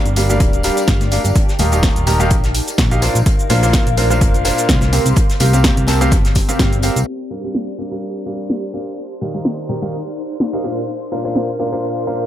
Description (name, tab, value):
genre	piano house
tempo	126 BPM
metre	4/4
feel	swing 54% on 16ths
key	G minor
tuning	A4 = 438 Hz
part	bright upright piano	riff	0.0-12.3 s	Bb2 to Bb5	-20 LUFS	equal	vintage 12-bit sampler grit, sidechain pumping, dub echo
part	granular cloud pad	texture	0.0-12.3 s	C4 to C6	-25 LUFS	equal	built-in reverb, sidechain pumping
part	solid FM bass	bass	0.1-7.0 s	D1 to C2	-17 LUFS	equal	sidechain pumping
part	punchy analog drum machine	drums	0.1-11.5 s	hi-hat, shaker, snare drum	-22 LUFS	equal	low-pass filter on hats, low-pass filter on perc, low-pass filter on snare, dub echo
part	loose indie drum kit	drums	0.2-7.0 s	hi-hat, snare drum	-30 LUFS	left 2 dB	none
part	tambourine and congas	percussion	0.2-7.0 s	none	-27 LUFS	left 6 dB	none
part	electronic kick drum	drums	0.4-6.7 s	none	-15 LUFS	equal	none
part	clear studio violin section	sustained chords	7.1-12.3 s	C5 to C6	-34 LUFS	right 1 dB	sidechain pumping, low-pass filter
room	little or no reverb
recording	echo-heavy mix, low-pass filter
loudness	-14 LUFS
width	side -12 dB against mid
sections	0.0-7.1 A section; 7.1-12.3 B section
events	filter sweep on violin section 7.1-12.3; filter sweep 7.1-12.3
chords	0.0 Gm7; 1.4 Ebadd9; 3.0 Bbadd9; 4.9 Gm7; 9.0 Ebadd9; 10.6 Bbadd9